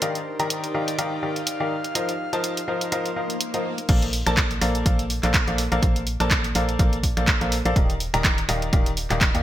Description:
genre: piano house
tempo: 124 BPM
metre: 4/4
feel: swing 56% on 16ths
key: Bb major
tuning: A4 = 439 Hz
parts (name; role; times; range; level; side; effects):
- clear grand piano; riff; 0.0-9.4 s; Eb3 to Bb5; -26 LUFS; left 1 dB; sidechain pumping, digital delay
- punchy analog drum machine; drums; 0.0-9.4 s; crash cymbal, finger snaps, handclaps, hi-hat; -25 LUFS; right 1 dB; gated reverb
- airy breathy pad; texture; 0.0-3.9 s; Eb4 to A5; -31 LUFS; right 1 dB; chorus, sidechain pumping
- swell; sound effects; 3.1-3.9 s; none; -34 LUFS; left 2 dB; none
- organ-like FM bass; bass; 3.9-9.4 s; Eb1 to Eb2; -26 LUFS; equal; sidechain pumping
- electronic kick drum; drums; 3.9-9.3 s; none; -21 LUFS; equal; none
room: light reverb, digital ambience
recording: bright 1980s-style digital production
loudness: -20 LUFS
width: side -13 dB against mid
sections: 0.0-3.9 A section; 3.9-9.4 B section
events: swell 3.1-3.9; drop 3.9-9.4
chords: 0.0 Ebmaj9; 2.0 F7sus4; 3.9 Bbmaj9; 7.8 Ebmaj9

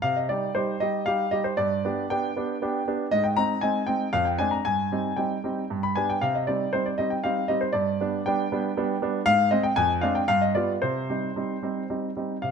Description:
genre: classical-period piano sonatina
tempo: 111-121 BPM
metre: 3/4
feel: rubato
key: C minor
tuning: A4 = 440 Hz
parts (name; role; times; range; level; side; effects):
- clear concert grand piano; solo; 0.0-12.5 s; F2 to B5; -23 LUFS; equal; none
room: moderate recital hall reverb, RT60 1.3 s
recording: close, detailed microphones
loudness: -23 LUFS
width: side -6 dB against mid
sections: 0.0-12.4 A section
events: none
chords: 0.0 Cm; 1.6 G; 3.1 Ab; 4.1 Dm7b5/F; 4.7 Cm/G; 5.7 G; 6.2 Cm; 7.7 G; 9.3 Ab; 9.8 Dm7b5/F; 10.3 G7; 10.8 Cm

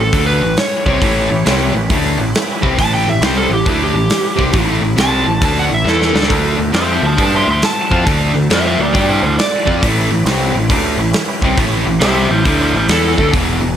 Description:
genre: blues rock power trio and southern rock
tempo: 136 BPM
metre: 4/4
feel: swing 65% on 8ths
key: unclear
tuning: A4 = 440 Hz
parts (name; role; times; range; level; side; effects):
- overdriven slide guitar; melody; 0.0-13.3 s; E4 to C6; -17 LUFS; right 1 dB; none
- overdriven tonewheel organ; sustained chords; 0.0-13.8 s; C4 to B4; -27 LUFS; right 2 dB; none
- fuzz guitar; riff; 0.0-13.7 s; E2 to G4; -16 LUFS; equal; distortion
- growling picked electric bass; bass; 0.0-13.8 s; E1 to G2; -19 LUFS; equal; overdrive
- big rock drum kit; drums; 0.1-13.5 s; hi-hat, kick drum, snare drum; -18 LUFS; equal; none
room: light reverb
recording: none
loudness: -12 LUFS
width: side -9 dB against mid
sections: 0.0-13.8 A section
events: electric slide guitar solo 0.0-13.8; drum fill 5.9-6.3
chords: 0.0 A7; 6.3 D7; 9.8 A7

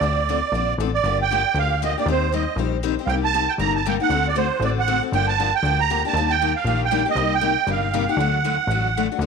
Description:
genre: acoustic string swing (jazz manouche)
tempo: 235 BPM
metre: 4/4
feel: swing 57% on 8ths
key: G minor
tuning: A4 = 440 Hz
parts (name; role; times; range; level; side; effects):
- musette accordion; melody; 0.0-9.1 s; C5 to Bb5; -21 LUFS; right 9 dB; none
- picked steel-string acoustic guitar; accompaniment; 0.0-9.3 s; C3 to C5; -25 LUFS; left 16 dB; none
- plucky analog bass; bass; 0.0-9.3 s; G1 to Eb2; -24 LUFS; left 1 dB; none
room: moderate plate reverb, RT60 2.9 s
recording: 1960s-style stereo with parts hard left and right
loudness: -18 LUFS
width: side -5 dB against mid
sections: 0.0-1.0 A section; 1.0-9.2 B section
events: none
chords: 0.0 Dm7; 1.0 Gm7; 2.1 Eb6; 3.1 Cm7; 4.1 D7; 5.1 Gm7; 6.1 Ebmaj7; 7.2 Cm7; 8.2 D

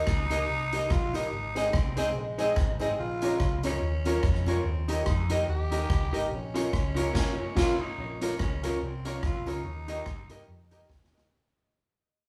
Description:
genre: ska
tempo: 144 BPM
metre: 4/4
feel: swing 57% on 8ths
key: Bb dorian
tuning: A4 = 440 Hz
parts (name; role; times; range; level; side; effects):
- growling tenor saxophone; melody; 0.0-10.9 s; Ab3 to G4; -37 LUFS; equal; none
- hollow-body jazz guitar; accompaniment; 0.0-11.3 s; Db4 to Eb5; -35 LUFS; equal; dub echo
- hollow-body short-scale picked electric bass; bass; 0.1-11.3 s; Ab1 to G2; -35 LUFS; equal; none
- street-band drum kit; drums; 0.1-11.3 s; crash cymbal, hi-hat, kick drum, rim click, snare drum; -33 LUFS; equal; none
- tambourine; percussion; 0.3-11.2 s; none; -57 LUFS; equal; none
- bright upright piano; stabs; 1.6-11.3 s; C4 to Bb4; -36 LUFS; equal; none
room: moderate large studio reverb, RT60 1.1 s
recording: band playing live in one room, small room ambience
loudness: -29 LUFS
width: mono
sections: 0.0-8.0 A section; 8.0-11.3 B section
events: band accent 7.1-8.0; fade-out 8.0-11.3; drum fill 10.9-11.3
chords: 0.0 Eb; 1.3 Ab; 3.0 Bbm; 4.7 Eb; 6.3 Bbm; 9.6 Eb

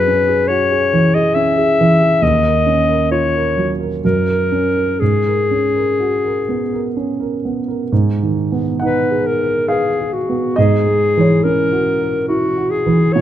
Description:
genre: classical, impressionist duo for clarinet and grand piano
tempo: 60-72 BPM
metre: 3/4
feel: rubato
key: G# minor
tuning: A4 = 440 Hz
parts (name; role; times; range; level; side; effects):
- bright clarinet; melody; 0.0-13.2 s; F#4 to E5; -16 LUFS; left 4 dB; none
- warm concert grand piano; accompaniment; 0.0-13.2 s; D#2 to F#5; -16 LUFS; right 3 dB; none
room: moderate recital hall reverb, RT60 1.8 s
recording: close, detailed microphones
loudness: -13 LUFS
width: side -11 dB against mid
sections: 0.0-7.9 A section; 7.9-13.2 B section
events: none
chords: 0.0 F#9sus4; 2.2 D#m9; 4.0 F#; 5.0 G#m11; 7.9 G#m9; 10.6 F#9/G#

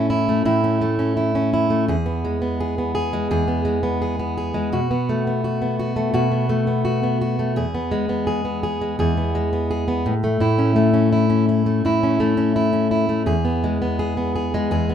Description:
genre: pop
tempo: 84 BPM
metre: 4/4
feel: straight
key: E major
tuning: A4 = 440 Hz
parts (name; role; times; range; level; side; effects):
- fingerpicked plugged-in steel-string acoustic guitar; solo; 0.0-14.9 s; E2 to G#4; -18 LUFS; equal; none
room: moderate studio reverb, RT60 0.5 s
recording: minimal, uncompressed stereo recording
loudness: -18 LUFS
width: side -8 dB against mid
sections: 0.0-14.9 A section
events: none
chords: 0.0 A; 1.9 E; 4.7 B5; 7.6 E; 10.1 A; 13.3 E

